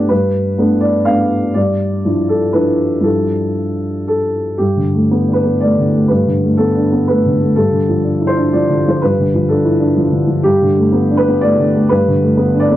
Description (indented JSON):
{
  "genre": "neoclassical minimalist piano",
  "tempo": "123 BPM",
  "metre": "3/4",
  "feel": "rubato",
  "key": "G mixolydian",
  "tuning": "A4 = 437 Hz",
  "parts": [
    { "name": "dark upright piano", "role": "solo", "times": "0.0-12.8 s", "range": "G2 to F5", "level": "-12 LUFS", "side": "equal", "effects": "none" }
  ],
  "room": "light reverb",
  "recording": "dry, close 1970s-style studio recording",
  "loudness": "-12 LUFS",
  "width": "side -13 dB against mid",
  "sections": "0.0-4.6 A section; 4.6-12.8 A section",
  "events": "none",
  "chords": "0.0 Gadd9; 1.6 Dmadd9/G; 4.6 Gadd9; 7.6 Dmadd9/G; 10.5 Gadd9",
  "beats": "| 0.10 0.58 1.07 | 1.55 2.04 2.54 | 3.05 3.57 4.09 | 4.60 5.11 5.60 | 6.09 6.59 7.08 | 7.57 8.05 8.54 | 9.03 9.51 9.98 | 10.46 10.94 11.42 | 11.90 12.38"
}